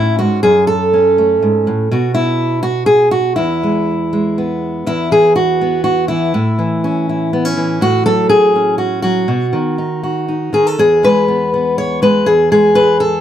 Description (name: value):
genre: folk, solo fingerstyle acoustic guitar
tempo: 122 BPM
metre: 3/4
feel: straight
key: E major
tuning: A4 = 441 Hz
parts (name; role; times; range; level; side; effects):
- fingerpicked steel-string acoustic guitar; solo; 0.0-13.2 s; E2 to C#5; -11 LUFS; equal; none
room: small room reverb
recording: dry, close 1970s-style studio recording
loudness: -11 LUFS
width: side -10 dB against mid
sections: 0.0-4.9 A section; 4.9-13.2 B section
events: none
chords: 0.4 F#m; 1.9 B5; 3.4 E; 4.9 E5; 6.3 A; 7.8 F#m/A; 9.3 B; 10.8 E; 12.3 Eadd11